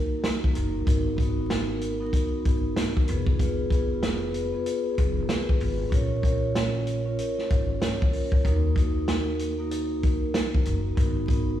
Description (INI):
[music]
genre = hip hop, boom-bap hip-hop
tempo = 95 BPM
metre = 4/4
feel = swing 63% on 16ths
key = Eb minor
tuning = A4 = 440 Hz
[part]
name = vibraphone with soft mallets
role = accompaniment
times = 0.0-11.6 s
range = Bb3 to Db5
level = -28 LUFS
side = equal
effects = cassette tape, high-pass filter, low-pass filter
[part]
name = upright bass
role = bass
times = 0.0-11.6 s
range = F1 to Eb2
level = -29 LUFS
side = equal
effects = none
[part]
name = vintage drum kit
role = drums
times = 0.2-11.5 s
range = hi-hat, kick drum, snare drum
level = -25 LUFS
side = equal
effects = none
[sound]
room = light reverb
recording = played on a big sound system in a bare room, stone room reverb, vinyl crackle, small room ambience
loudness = -23 LUFS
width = side -11 dB against mid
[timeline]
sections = 0.0-11.6 A section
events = none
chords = 0.0 Ebm; 0.9 Abm7; 3.1 Fdim; 5.9 Bbm; 8.4 Ebm; 11.0 Abm7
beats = 0.24 | 0.87 1.50 2.13 2.76 | 3.39 4.03 4.66 5.29 | 5.92 6.55 7.18 7.82 | 8.45 9.08 9.71 10.34 | 10.97